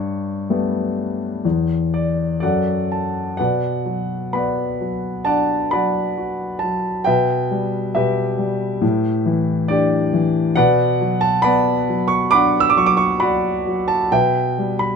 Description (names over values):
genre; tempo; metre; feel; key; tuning
classical, lyrical solo piano; 67 BPM; 4/4; uneven beats, rubato; B minor; A4 = 440 Hz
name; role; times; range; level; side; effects
warm concert grand piano; solo; 0.0-15.0 s; E2 to E6; -17 LUFS; equal; none
room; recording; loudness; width
light reverb; close, detailed microphones; -17 LUFS; side -6 dB against mid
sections
0.0-3.4 A section; 3.4-15.0 B section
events
grand piano fill 1.4-3.4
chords
0.0 Gadd9; 1.4 Em6; 2.4 F#m; 3.4 Bm; 7.1 Em/B; 8.8 A7sus4; 10.6 Bm; 14.1 Em/B